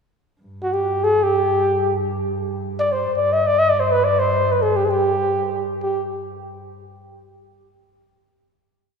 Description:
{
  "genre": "Persian modal ensemble",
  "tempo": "free time",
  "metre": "none",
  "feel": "none",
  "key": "G dastgah chahargah",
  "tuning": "A4 = 439 Hz",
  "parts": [
    { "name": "rich double bass", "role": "drone", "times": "0.4-5.9 s", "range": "G2", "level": "-28 LUFS", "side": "right 1 dB", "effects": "none" },
    { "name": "breathy flugelhorn", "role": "melody", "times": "0.6-6.0 s", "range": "F#4 to Eb5+48c", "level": "-18 LUFS", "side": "equal", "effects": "none" }
  ],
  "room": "wet church reverb, RT60 3.2 s",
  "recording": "recorded in a church or concert hall",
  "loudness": "-17 LUFS",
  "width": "side -5 dB against mid",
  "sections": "0.4-5.8 free-time section; 5.8-7.2 final note",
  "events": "none",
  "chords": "none",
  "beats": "free time"
}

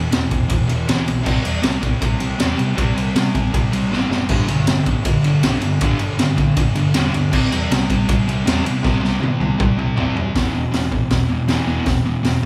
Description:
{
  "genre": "garage rock duo or trio",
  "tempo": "158 BPM",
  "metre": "4/4",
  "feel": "straight",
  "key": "E minor",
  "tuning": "A4 = 436 Hz",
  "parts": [
    { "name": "fuzz guitar", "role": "riff", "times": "0.0-12.5 s", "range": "E2 to C4", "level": "-22 LUFS", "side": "equal", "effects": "distortion" },
    { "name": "hollow-body short-scale picked electric bass", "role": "bass", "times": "0.0-12.5 s", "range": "E1 to C3", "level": "-28 LUFS", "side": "equal", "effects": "tube saturation" },
    { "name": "raw garage drum kit", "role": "drums", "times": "0.1-12.5 s", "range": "crash cymbal, hi-hat, kick drum, ride cymbal, snare drum, toms", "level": "-22 LUFS", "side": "equal", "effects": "none" }
  ],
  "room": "moderate large studio reverb, RT60 0.9 s",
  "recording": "band playing live in one room",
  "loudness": "-18 LUFS",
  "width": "mono",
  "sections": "0.0-10.3 A section; 10.3-12.5 B section",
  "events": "drum fill 3.9-4.3, 8.8-10.3",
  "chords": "0.0 E5; 1.3 C5; 4.3 G5; 7.3 C5; 10.3 E5",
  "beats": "0.12 0.50 0.88 | 1.26 1.64 2.02 2.40 | 2.78 3.16 3.54 3.92 | 4.30 4.67 5.05 5.43 | 5.81 6.19 6.57 6.95 | 7.32 7.70 8.08 8.46 | 8.84 9.21 9.59 9.97 | 10.35 10.73 11.11 11.49 | 11.87 12.25"
}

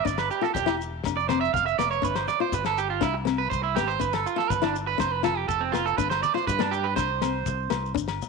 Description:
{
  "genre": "highlife guitar band",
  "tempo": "122 BPM",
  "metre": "4/4",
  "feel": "straight",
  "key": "G mixolydian",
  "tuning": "A4 = 440 Hz",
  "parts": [
    { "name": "nylon-string guitar", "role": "accompaniment", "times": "0.0-8.1 s", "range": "B3 to F4", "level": "-30 LUFS", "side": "left 13 dB", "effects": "none" },
    { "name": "electric guitar at the edge of break-up", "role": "arpeggios", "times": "0.0-7.9 s", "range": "C4 to F5", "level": "-26 LUFS", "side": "right 11 dB", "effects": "slapback echo" },
    { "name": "fingered electric bass", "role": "bass", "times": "0.0-8.2 s", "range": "E1 to G2", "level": "-33 LUFS", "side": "left 1 dB", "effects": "none" },
    { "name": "damped 70s drum kit", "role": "drums", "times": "0.1-8.2 s", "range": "kick drum, snare drum", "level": "-35 LUFS", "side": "left 6 dB", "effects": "none" },
    { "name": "congas", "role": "percussion", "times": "0.1-8.3 s", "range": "none", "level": "-38 LUFS", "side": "left 11 dB", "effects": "none" },
    { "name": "shekere", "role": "percussion", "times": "0.1-8.3 s", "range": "none", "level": "-38 LUFS", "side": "left 6 dB", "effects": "none" },
    { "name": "agogo bells", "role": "percussion", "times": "0.2-8.2 s", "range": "none", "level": "-35 LUFS", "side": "left 14 dB", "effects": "none" }
  ],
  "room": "moderate echo chamber reverb, RT60 2.1 s",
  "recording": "1960s-style stereo with parts hard left and right",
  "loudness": "-23 LUFS",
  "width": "side -3 dB against mid",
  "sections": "0.0-8.3 A section",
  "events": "clean electric guitar solo 0.0-8.3",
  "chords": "0.1 G5; 1.0 F5; 2.0 G5; 3.0 Abmaj7#5; 4.0 G5; 5.0 F; 6.0 G; 7.0 Csus2",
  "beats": "| 0.06 0.56 1.05 1.54 | 2.04 2.53 3.02 3.52 | 4.01 4.51 5.00 5.49 | 5.99 6.48 6.97 7.47 | 7.96"
}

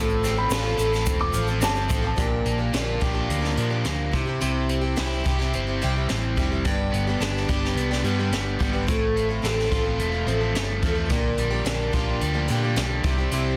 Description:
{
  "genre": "folk rock and heartland rock",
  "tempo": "108 BPM",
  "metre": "4/4",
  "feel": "straight",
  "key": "unclear",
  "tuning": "A4 = 440 Hz",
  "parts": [
    { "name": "dark upright piano", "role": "second line", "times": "0.0-2.2 s", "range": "A5 to E6", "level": "-32 LUFS", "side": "equal", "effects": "digital delay, plate reverb" },
    { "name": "picked plugged-in twelve-string acoustic guitar", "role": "accompaniment", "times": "0.0-13.6 s", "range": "G2 to A4", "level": "-30 LUFS", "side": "equal", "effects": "plate reverb" },
    { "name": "overdriven electric guitar", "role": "riff", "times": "0.0-13.6 s", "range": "G2 to A4", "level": "-30 LUFS", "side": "equal", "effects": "none" },
    { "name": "hollow-body short-scale fingered electric bass", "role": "bass", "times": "0.0-13.6 s", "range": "E1 to Bb2", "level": "-29 LUFS", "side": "equal", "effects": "none" },
    { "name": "tube shaker", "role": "percussion", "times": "0.1-2.0 s", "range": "none", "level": "-40 LUFS", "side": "equal", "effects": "none" },
    { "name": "jazz brush drum kit", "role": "drums", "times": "0.2-13.4 s", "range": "hi-hat, kick drum, snare drum", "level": "-30 LUFS", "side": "equal", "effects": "soft clipping on snare" }
  ],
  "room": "light reverb",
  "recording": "dense, heavily limited modern master",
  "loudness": "-24 LUFS",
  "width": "mono",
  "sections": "0.0-2.2 A section; 2.2-13.6 B section",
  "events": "upright piano solo 0.0-2.2",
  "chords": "0.0 F/A; 2.2 Bb6; 4.1 C; 6.6 G; 8.9 F/A; 11.1 Bb6; 13.0 C",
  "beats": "0.51 1.07 1.63 | 2.18 2.74 3.30 3.86 | 4.42 4.97 5.53 6.09 | 6.65 7.20 7.76 8.32 | 8.88 9.43 9.99 10.55 | 11.10 11.66 12.21 12.77 | 13.33"
}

